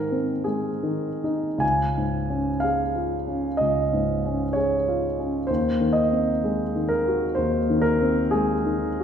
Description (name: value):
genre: classical, romantic nocturne for solo piano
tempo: 49-64 BPM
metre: 4/4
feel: rubato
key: Db major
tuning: A4 = 440 Hz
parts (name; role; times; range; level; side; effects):
- warm concert grand piano; solo; 0.0-9.0 s; Db2 to Ab5; -21 LUFS; equal; none
room: wet recital hall reverb, RT60 1.3 s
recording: heard from further back in the room, nothing above 10.5 kHz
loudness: -21 LUFS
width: side -8 dB against mid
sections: 0.0-9.0 A section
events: none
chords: 0.0 Ab; 1.6 Db; 5.5 Ab7/Eb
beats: 0.46 | 1.62 2.62 3.59 4.56 | 5.50 6.44 7.38 8.31